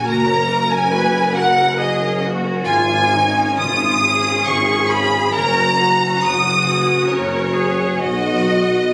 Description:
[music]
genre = classical, slow romantic movement for string orchestra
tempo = 68 BPM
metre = 3/4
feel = uneven beats, rubato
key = F# major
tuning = A4 = 438 Hz
[part]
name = clear chamber violin section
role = melody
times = 0.0-8.9 s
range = C#5 to D#6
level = -21 LUFS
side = equal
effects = none
[part]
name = rich studio violin section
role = second line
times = 0.0-8.9 s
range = C#5 to D#6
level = -23 LUFS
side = equal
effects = none
[part]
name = rich studio viola section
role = accompaniment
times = 0.0-8.9 s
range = A#3 to A#4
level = -26 LUFS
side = equal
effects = none
[part]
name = clear chamber double bass section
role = bass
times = 0.0-8.9 s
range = F#1 to B1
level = -25 LUFS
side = equal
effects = none
[part]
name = rich studio cello section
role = bass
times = 0.0-8.9 s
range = D#4 to B4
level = -24 LUFS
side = equal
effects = none
[sound]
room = moderate large studio reverb, RT60 1.4 s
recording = recorded on a phone in the room, club reverb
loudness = -17 LUFS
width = mono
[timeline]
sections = 0.0-8.9 A section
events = none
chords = 0.0 F#; 2.6 C#/G#; 5.3 F#; 8.0 B

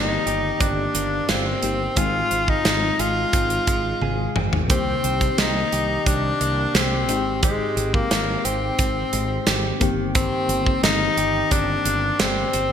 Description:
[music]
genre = 1980s-style pop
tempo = 88 BPM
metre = 4/4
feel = straight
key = C minor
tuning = A4 = 440 Hz
[part]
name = clear tenor saxophone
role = melody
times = 0.0-12.7 s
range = Ab3 to F4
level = -23 LUFS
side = left 2 dB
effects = none
[part]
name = FM electric piano with auto-pan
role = accompaniment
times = 0.0-12.7 s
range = G2 to G4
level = -29 LUFS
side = left 5 dB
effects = none
[part]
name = direct-recorded clean electric guitar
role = riff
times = 0.0-12.7 s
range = Eb3 to Ab4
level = -30 LUFS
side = right 6 dB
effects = wide subtle chorus
[part]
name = fretless electric bass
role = bass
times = 0.0-12.7 s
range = G1 to C2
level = -27 LUFS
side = right 1 dB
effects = none
[part]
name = modern studio drum kit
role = drums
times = 0.3-12.7 s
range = hi-hat, kick drum, snare drum, toms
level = -22 LUFS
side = right 1 dB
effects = gated reverb
[sound]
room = moderate lush hall reverb, RT60 1.8 s, small room ambience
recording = bright 1980s-style digital production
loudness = -19 LUFS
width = side -8 dB against mid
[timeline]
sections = 0.0-12.7 A section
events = drum fill 4.0-4.7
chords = 0.0 Cm7/G; 2.0 Fm7/Ab; 4.7 Cm7; 7.1 Abmaj7; 9.8 Cm7/G

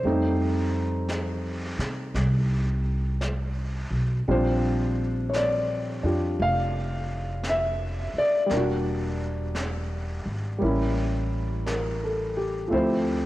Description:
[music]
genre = jazz ballad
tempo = 57 BPM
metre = 4/4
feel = swing 66% on 8ths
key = unclear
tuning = A4 = 440 Hz
[part]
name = warm concert grand piano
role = accompaniment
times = 0.0-13.3 s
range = F3 to F5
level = -26 LUFS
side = equal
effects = none
[part]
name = upright bass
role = bass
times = 0.0-13.3 s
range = E1 to C3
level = -27 LUFS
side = equal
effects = tube saturation
[part]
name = jazz brush drum kit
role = drums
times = 0.0-13.3 s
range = brushed snare drum, hi-hat, snare drum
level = -37 LUFS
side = equal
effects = none
[sound]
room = light reverb, small room ambience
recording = home recording on cassette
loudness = -24 LUFS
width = side -16 dB against mid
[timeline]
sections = 0.0-13.3 A section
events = none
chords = 0.0 F7; 4.3 Bb6; 8.5 Em7b5; 10.6 A7b9; 12.7 Dm9

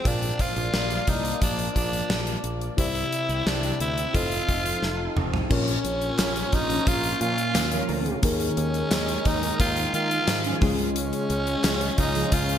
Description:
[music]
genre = 1980s-style pop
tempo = 88 BPM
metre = 4/4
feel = straight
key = unclear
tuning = A4 = 440 Hz
[part]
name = raspy tenor saxophone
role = melody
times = 0.0-12.6 s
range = Db4 to F4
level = -28 LUFS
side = equal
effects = digital delay
[part]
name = mellow FM electric piano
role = accompaniment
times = 0.0-12.6 s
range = Bb2 to F5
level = -31 LUFS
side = left 2 dB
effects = chorus
[part]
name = phased analog pad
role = sustained chords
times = 0.3-12.6 s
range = C3 to D5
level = -33 LUFS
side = equal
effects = phaser, chorus
[part]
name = fingered electric bass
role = bass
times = 0.1-12.6 s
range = F1 to Eb3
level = -30 LUFS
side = equal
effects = none
[part]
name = gated 80s drum kit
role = drums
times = 0.1-12.6 s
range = crash cymbal, hi-hat, kick drum, snare drum, tambourine, toms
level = -26 LUFS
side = equal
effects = none
[part]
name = mellow synth brass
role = stabs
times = 6.2-12.3 s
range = F3 to Bb4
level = -34 LUFS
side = right 2 dB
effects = chorus, digital delay
[part]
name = group handclap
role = percussion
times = 6.2-11.8 s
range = none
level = barely audible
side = none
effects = none
[sound]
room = moderate lush hall reverb, RT60 2.7 s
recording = bright 1980s-style digital production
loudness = -22 LUFS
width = side -9 dB against mid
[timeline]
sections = 0.0-5.5 A section; 5.5-12.6 B section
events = drum fill 4.8-5.5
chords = 0.1 Bb; 2.8 C; 4.1 F7; 5.5 Bbm; 8.2 Ebsus4; 10.6 Db

